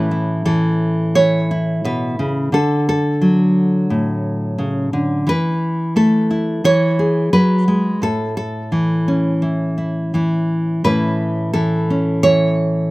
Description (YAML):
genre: folk, solo fingerstyle acoustic guitar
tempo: 87 BPM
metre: 4/4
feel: straight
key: A major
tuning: A4 = 439 Hz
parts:
  - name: nylon-string guitar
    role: solo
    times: 0.0-12.9 s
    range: A2 to C#5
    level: -15 LUFS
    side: equal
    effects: none
room: little or no reverb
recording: recorded outdoors, with no room sound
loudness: -15 LUFS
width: side -20 dB against mid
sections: 0.0-10.8 A section; 10.8-12.9 A section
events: none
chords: 0.0 Aadd9; 2.5 D; 5.3 Esus4; 6.6 Eadd9; 8.0 A; 10.8 Aadd9